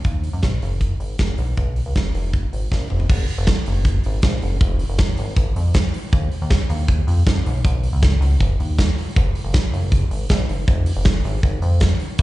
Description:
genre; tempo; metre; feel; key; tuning
jangly indie pop; 158 BPM; 4/4; straight; unclear; A4 = 436 Hz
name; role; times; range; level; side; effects
chorused synth bass; bass; 0.0-12.2 s; E#1 to F#2; -20 LUFS; equal; none
big rock drum kit; drums; 0.0-12.2 s; crash cymbal, hi-hat, kick drum, snare drum, toms; -19 LUFS; equal; none
room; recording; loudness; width
little or no reverb; live gig heard through the venue's PA, club reverb, nothing above 10.8 kHz; -17 LUFS; side -17 dB against mid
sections
0.0-3.1 A section; 3.1-12.2 B section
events
drum fill 2.7-3.1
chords
none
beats
| 0.05 0.43 0.81 1.19 | 1.57 1.95 2.33 2.71 | 3.09 3.47 3.85 4.23 | 4.61 4.99 5.37 5.75 | 6.13 6.51 6.89 7.26 | 7.64 8.02 8.40 8.78 | 9.16 9.54 9.92 10.30 | 10.68 11.06 11.44 11.81 | 12.19

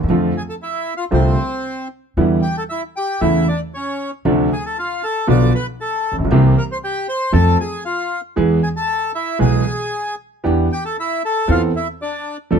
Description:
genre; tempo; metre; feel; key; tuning
tango; 116 BPM; 4/4; rubato; A harmonic minor; A4 = 440 Hz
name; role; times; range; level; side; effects
clear concert grand piano; accompaniment; 0.0-12.6 s; A1 to A4; -16 LUFS; right 1 dB; none
upright bass; bass; 0.0-12.6 s; A1 to F2; -18 LUFS; equal; none
bandoneon; melody; 0.4-12.4 s; C4 to D6; -21 LUFS; left 1 dB; none
room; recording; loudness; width
light reverb; close, detailed microphones; -16 LUFS; side -6 dB against mid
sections
0.0-12.6 A section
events
none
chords
0.1 F6; 2.2 Em7; 3.2 A/E; 4.3 Dm7; 5.3 Bdim; 6.3 C7; 7.3 F; 8.4 E; 10.4 Em7; 11.5 Amadd9/E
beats
| 0.09 0.61 1.12 1.65 | 2.17 2.70 3.22 3.74 | 4.25 4.77 5.28 5.80 | 6.31 6.82 7.33 7.85 | 8.36 8.88 9.39 9.92 | 10.44 10.96 11.48 12.00 | 12.52

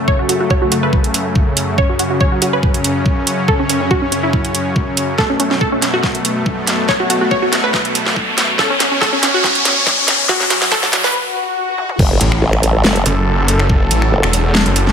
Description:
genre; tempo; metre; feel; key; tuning
heavy wobble dubstep; 141 BPM; 4/4; half-time; F# minor; A4 = 441 Hz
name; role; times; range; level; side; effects
supersaw chords; sustained chords; 0.0-14.9 s; F#2 to A4; -19 LUFS; left 1 dB; sidechain pumping, low-pass filter
wide unison pluck; melody; 0.1-11.9 s; F#3 to C#5; -18 LUFS; right 1 dB; vintage 12-bit sampler grit, tape echo
electronic kick drum; drums; 0.1-13.8 s; none; -16 LUFS; equal; studio reverb
dubstep drum kit; drums; 0.3-14.9 s; crash cymbal, finger snaps, hi-hat, snare drum, toms; -17 LUFS; equal; high-pass filter on snare, studio reverb, high-pass filter on hats, high-pass filter on toms, high-pass filter on cymbals
riser, swell and impact; sound effects; 6.4-13.7 s; none; -19 LUFS; left 1 dB; none
formant-sweep wobble bass; bass; 12.0-14.2 s; F#1 to A1; -14 LUFS; equal; chorus, overdrive
snarling distorted saw bass; bass; 12.2-14.9 s; E1 to A1; -14 LUFS; equal; distortion, overdrive
room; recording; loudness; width
moderate digital room reverb, RT60 1.0 s, digital ambience; high-pass filter; -12 LUFS; side -7 dB against mid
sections
0.0-12.0 A section; 12.0-14.9 B section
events
build-up 0.0-12.0; filter sweep on supersaw synth 0.0-12.0; filter sweep 0.0-12.0; drum fill 5.2-11.1, 11.8; riser 6.4-11.1; break 11.1-12.0; swell 11.1-12.0; drop 12.0-14.9; impact 12.0-13.7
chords
0.0 F#m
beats
| 0.08 0.50 0.93 1.35 | 1.78 2.21 2.63 3.06 | 3.48 3.91 4.33 4.76 | 5.18 5.61 6.04 6.46 | 6.89 7.31 7.74 8.16 | 8.59 9.02 9.44 9.87 | 10.29 10.72 11.14 11.57 | 11.99 12.42 12.84 13.27 | 13.70 14.12 14.55

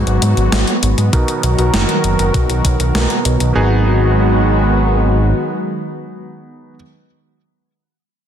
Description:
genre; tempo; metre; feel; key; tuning
synthwave; 99 BPM; 4/4; straight; G# minor; A4 = 439 Hz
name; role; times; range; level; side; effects
warm analog pad; sustained chords; 0.0-6.7 s; D#3 to A#4; -17 LUFS; right 1 dB; chorus, sidechain pumping
clear electric grand piano; stabs; 0.0-6.7 s; G#2 to A#4; -24 LUFS; right 2 dB; low-pass filter, ping-pong delay
fat analog bass; bass; 0.0-5.3 s; F#1 to G#2; -15 LUFS; equal; sidechain pumping
gated 80s digital drum machine; drums; 0.1-3.5 s; hi-hat, snare drum; -19 LUFS; equal; gated reverb, gated reverb snare, overdrive, studio reverb
electronic kick drum; drums; 1.1-2.8 s; none; -17 LUFS; equal; overdrive, studio reverb
room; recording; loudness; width
light reverb, digital ambience; dense, heavily limited modern master; -12 LUFS; side -9 dB against mid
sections
0.0-3.6 A section; 3.6-6.0 B section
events
filter sweep on electric grand piano 0.0-3.6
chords
0.0 G#m7; 1.1 Bmaj7; 3.6 G#m7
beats
0.53 | 1.13 1.74 2.34 2.95 | 3.56 4.16 4.77 5.37

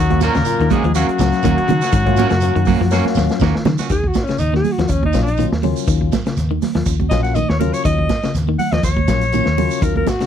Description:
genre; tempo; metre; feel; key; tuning
afrobeat; 122 BPM; 4/4; swing 55% on 16ths; Eb minor; A4 = 437 Hz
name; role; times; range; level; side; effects
warm trumpet; melody; 0.0-3.4 s; Gb4 to Bb4; -22 LUFS; equal; tape echo
brilliant trombone; second line; 0.0-3.4 s; Gb3 to Bb3; -28 LUFS; right 3 dB; none
raspy baritone saxophone; second line; 0.0-3.4 s; Gb2 to Bb2; -27 LUFS; left 7 dB; none
electric guitar at the edge of break-up; arpeggios; 0.0-10.3 s; Db3 to Gb3; -23 LUFS; left 9 dB; none
fingered electric bass; bass; 0.0-10.0 s; Bb1 to Eb3; -19 LUFS; equal; none
barky tine electric piano; accompaniment; 0.1-10.1 s; Gb3 to F5; -24 LUFS; left 15 dB; wide subtle chorus
electric guitar at the edge of break-up; stabs; 0.1-3.9 s; Bb3 to Gb4; -24 LUFS; right 10 dB; none
vintage drum kit; drums; 0.1-10.3 s; hi-hat, kick drum, snare drum; -21 LUFS; equal; none
congas; percussion; 0.1-10.2 s; none; -23 LUFS; right 18 dB; none
shekere; percussion; 0.2-10.3 s; none; -30 LUFS; right 8 dB; none
breathy alto saxophone; melody; 3.9-10.3 s; Db4 to Gb5; -21 LUFS; left 1 dB; none
room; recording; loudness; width
little or no reverb; dry, close 1970s-style studio recording; -14 LUFS; side -9 dB against mid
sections
0.0-3.9 A section; 3.9-10.3 B section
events
drum fill 2.9-3.9; alto saxophone solo 3.9-10.3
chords
0.0 Ebm7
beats
0.47 0.96 1.45 | 1.94 2.43 2.92 3.41 | 3.91 4.40 4.89 5.38 | 5.88 6.37 6.87 7.36 | 7.85 8.35 8.84 9.33 | 9.83

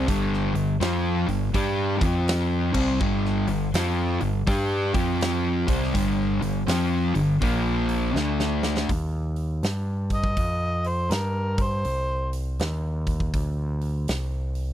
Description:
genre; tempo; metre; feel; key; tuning
blues rock power trio and southern rock; 81 BPM; 4/4; swing 64% on 8ths; G minor; A4 = 441 Hz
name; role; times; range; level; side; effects
fuzz guitar; riff; 0.0-8.9 s; G2 to G4; -23 LUFS; left 1 dB; distortion
growling picked electric bass; bass; 0.0-14.7 s; G1 to G2; -27 LUFS; equal; overdrive
big rock drum kit; drums; 0.1-14.7 s; crash cymbal, hi-hat, kick drum, snare drum; -29 LUFS; equal; none
overdriven harmonica; melody; 10.1-12.3 s; Bb4 to Eb5; -28 LUFS; equal; none
room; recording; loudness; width
little or no reverb; dry, close 1970s-style studio recording; -22 LUFS; side -11 dB against mid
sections
0.0-8.9 A section; 8.9-14.7 B section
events
drum fill 8.2-8.9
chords
0.0 G5; 1.9 F5; 2.6 G5; 4.8 F5; 5.6 G5; 7.4 Bb5; 8.2 D5; 8.9 Eb; 11.5 Cm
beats
| 0.08 0.81 1.54 2.27 | 3.01 3.74 4.47 5.21 | 5.94 6.68 7.42 8.15 | 8.89 9.63 10.37 11.11 | 11.86 12.60 13.34 14.08

